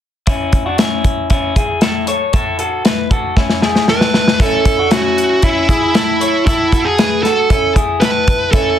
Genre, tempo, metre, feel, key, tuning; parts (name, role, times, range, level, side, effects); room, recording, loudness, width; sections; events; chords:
jangly indie pop; 116 BPM; 4/4; straight; A major; A4 = 440 Hz
electric guitar through a small old amp; arpeggios; 0.3-8.8 s; C#4 to C#5; -18 LUFS; left 3 dB; slapback echo, plate reverb
modern studio drum kit; drums; 0.3-8.7 s; hi-hat, kick drum, snare drum; -15 LUFS; left 1 dB
high-gain lead guitar; melody; 3.9-8.8 s; E4 to B4; -14 LUFS; right 3 dB; distortion, slapback echo
light reverb; dense, heavily limited modern master; -12 LUFS; side -10 dB against mid
0.3-4.4 A section; 4.4-8.8 B section
drum fill 3.4-4.4
0.3 A